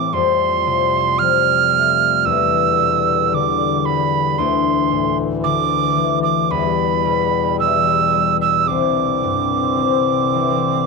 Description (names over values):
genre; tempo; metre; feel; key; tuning
celtic folk, Celtic slow air; 56 BPM; 4/4; rubato; unclear; A4 = 440 Hz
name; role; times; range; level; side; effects
reedy mid whistle; melody; 0.0-10.9 s; B5 to F6; -17 LUFS; right 11 dB; none
concert harp; accompaniment; 0.0-10.9 s; C2 to E4; -20 LUFS; left 12 dB; none
warm French horn section; sustained chords; 0.0-10.9 s; D2 to C4; -24 LUFS; left 2 dB; stereo widening
room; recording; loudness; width
moderate spring reverb, RT60 1.7 s, small room ambience; 1960s-style stereo with parts hard left and right; -15 LUFS; side -3 dB against mid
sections
0.0-10.9 A section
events
none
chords
0.1 Fadd9; 2.3 Em7; 4.4 Dsus2; 6.5 Em; 8.7 Cadd9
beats
| 0.12 1.19 2.26 3.33 | 4.39 5.44 6.50 7.59 | 8.68 9.77